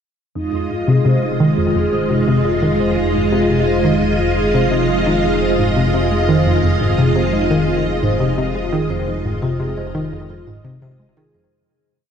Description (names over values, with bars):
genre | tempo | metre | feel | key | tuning
ambient, sequencer-driven space music | 86 BPM | 4/4 | straight | F minor | A4 = 441 Hz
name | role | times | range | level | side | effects
string machine, full ensemble | sustained chords | 0.4-11.5 s | Ab3 to Eb5 | -19 LUFS | right 1 dB | ensemble chorus
vibraphone with medium mallets | arpeggios | 0.4-11.5 s | Eb4 to Eb5 | -22 LUFS | left 1 dB | auto-pan, low-pass filter, ping-pong delay
analog pluck | riff | 0.4-11.5 s | F2 to Ab3 | -18 LUFS | left 1 dB | chorus, ping-pong delay
fat analog bass | bass | 0.4-11.5 s | F1 | -24 LUFS | equal | none
room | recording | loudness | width
wet cathedral reverb, RT60 5.7 s | in a vast, echoing space | -14 LUFS | side -8 dB against mid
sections
0.4-11.5 A section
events
filter sweep on synth arpeggio sound 0.4-11.5; filter sweep on vibraphone 0.4-11.5; fade-out 7.8-11.5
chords
0.4 Fm7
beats
| 0.35 1.05 1.75 2.45 | 3.15 3.84 4.54 5.24 | 5.94 6.63 7.33 8.03 | 8.73 9.42 10.12 10.82